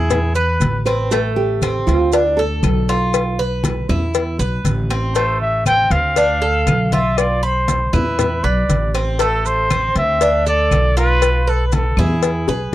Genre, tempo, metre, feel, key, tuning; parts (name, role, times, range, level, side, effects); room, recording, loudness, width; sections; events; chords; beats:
latin, Cuban son and guajira; 119 BPM; 4/4; straight; A harmonic minor; A4 = 442 Hz
breathy trumpet; melody; 0.0-0.8, 5.2-12.7 s; G#4 to G5; -18 LUFS; equal
Cuban tres; arpeggios; 0.0-12.7 s; A3 to B5; -22 LUFS; right 2 dB
upright bass; bass; 0.0-12.7 s; A1 to E2; -19 LUFS; equal
congas; percussion; 0.1-12.7 s; -23 LUFS; left 1 dB
cowbell and bongos; percussion; 0.1-12.6 s; -22 LUFS; left 7 dB
maracas; percussion; 0.1-12.7 s; -32 LUFS; right 17 dB
nylon-string guitar; second line; 0.9-3.3 s; F4 to B4; -20 LUFS; right 3 dB
claves; percussion; 0.9-12.2 s; -33 LUFS; left 17 dB
light reverb; dry, close 1970s-style studio recording; -14 LUFS; side -14 dB against mid
0.0-12.7 A section
drum fill 12.5
0.1 E5; 1.1 Am7; 2.1 Dm; 3.1 Bsus4; 4.1 E5; 5.2 Am; 6.2 Dm; 7.2 Dm13/B; 8.2 E5; 9.2 Am; 10.2 Dm; 11.2 Eadd11/B; 12.2 E
0.10 0.61 | 1.11 1.62 2.12 2.63 | 3.14 3.64 4.15 4.65 | 5.16 5.66 6.17 6.67 | 7.18 7.68 8.19 8.69 | 9.20 9.70 10.21 10.71 | 11.22 11.72 12.23 12.74